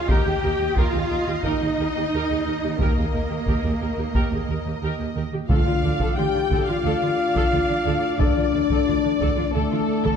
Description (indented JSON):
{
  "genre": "cinematic, epic orchestral film score",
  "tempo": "89 BPM",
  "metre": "4/4",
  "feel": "straight",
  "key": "D minor from 5.5 s",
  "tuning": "A4 = 440 Hz",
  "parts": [
    { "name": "dark symphonic violin section", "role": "melody", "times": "0.0-10.2 s", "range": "A4 to G5", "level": "-32 LUFS", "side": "left 4 dB", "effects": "none" },
    { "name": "warm symphonic violin section", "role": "second line", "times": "0.0-10.2 s", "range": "A4 to G5", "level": "-32 LUFS", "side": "left 2 dB", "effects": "none" },
    { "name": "rich studio cello section", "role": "bass", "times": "0.0-10.1 s", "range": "D3 to G4", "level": "-29 LUFS", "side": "right 4 dB", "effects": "none" },
    { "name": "rich symphonic viola section", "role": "accompaniment", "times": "0.1-10.2 s", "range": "D4 to D5", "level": "-31 LUFS", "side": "right 1 dB", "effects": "none" },
    { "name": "mellow French horn section", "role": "sustained chords", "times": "0.1-10.2 s", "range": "A3 to G4", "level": "-25 LUFS", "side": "left 6 dB", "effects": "none" },
    { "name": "warm symphonic double bass section", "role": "bass", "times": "0.1-9.6 s", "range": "D2 to Eb2", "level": "-28 LUFS", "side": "right 4 dB", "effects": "none" },
    { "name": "taiko ensemble", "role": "drums", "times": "0.1-10.2 s", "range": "none", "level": "-25 LUFS", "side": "equal", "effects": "none" },
    { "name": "mellow trombone section", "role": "sustained chords", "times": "5.5-10.2 s", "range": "A2 to D4", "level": "-32 LUFS", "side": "right 1 dB", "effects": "none" },
    { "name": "mellow trumpet", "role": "stabs", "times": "5.5-10.2 s", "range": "A4 to G5", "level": "-30 LUFS", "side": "right 1 dB", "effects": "none" },
    { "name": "timpani", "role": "percussion", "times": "5.5-6.5 s", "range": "D3", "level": "-29 LUFS", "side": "left 1 dB", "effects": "none" }
  ],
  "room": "moderate concert hall reverb, RT60 2.0 s",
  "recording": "dark, warm production",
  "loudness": "-20 LUFS",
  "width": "side -7 dB against mid",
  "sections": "0.0-5.5 A section; 5.5-10.2 B section",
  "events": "none",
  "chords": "0.1 Eb; 5.5 Dm"
}